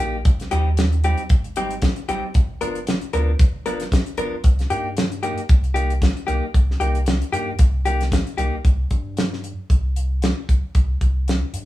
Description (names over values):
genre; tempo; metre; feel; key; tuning
straight-eighth soul blues; 114 BPM; 4/4; swing 55% on 16ths; C minor; A4 = 439 Hz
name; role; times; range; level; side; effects
direct-recorded clean electric guitar; stabs; 0.0-8.6 s; F3 to A#4; -25 LUFS; left 2 dB; none
saturated sub bass; bass; 0.0-11.7 s; G1 to G2; -23 LUFS; equal; none
damped 70s drum kit; drums; 0.2-11.7 s; hi-hat, kick drum, snare drum; -18 LUFS; equal; none
room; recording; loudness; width
moderate studio reverb, RT60 0.9 s; band playing live in one room, small room ambience; -18 LUFS; side -15 dB against mid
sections
0.0-8.6 A section; 8.6-11.7 B section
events
none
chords
0.3 Abmaj7; 2.4 G7#9; 4.4 Cm7; 8.6 C5